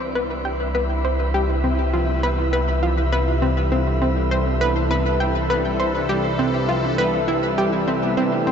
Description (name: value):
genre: ambient, sequencer-driven space music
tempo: 101 BPM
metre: 4/4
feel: straight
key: C major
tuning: A4 = 439 Hz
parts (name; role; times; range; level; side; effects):
- sweeping resonant pad; sustained chords; 0.0-8.5 s; C3 to B4; -27 LUFS; left 1 dB; chorus
- Celtic harp; arpeggios; 0.0-8.5 s; G3 to C5; -32 LUFS; moving between left 2 dB and right 4 dB; none
- analog pluck; riff; 0.0-8.5 s; C4 to G5; -22 LUFS; equal; chorus, tape echo
- analog drone; bass; 0.2-8.5 s; C2; -24 LUFS; equal; chorus
- wind-like tuned noise texture; texture; 0.0-8.5 s; E4 to G5; -27 LUFS; equal; built-in reverb
room: wet shimmer reverb, RT60 8.4 s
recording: dark, warm production, nothing above 7.7 kHz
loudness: -18 LUFS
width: side -7 dB against mid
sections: 0.0-8.5 A section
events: fade-in on analog synth pad 0.0-8.5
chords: 0.0 Cmaj7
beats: 0.45 | 1.04 1.64 2.23 2.83 | 3.42 4.02 4.61 5.20 | 5.80 6.39 6.99 7.58 | 8.17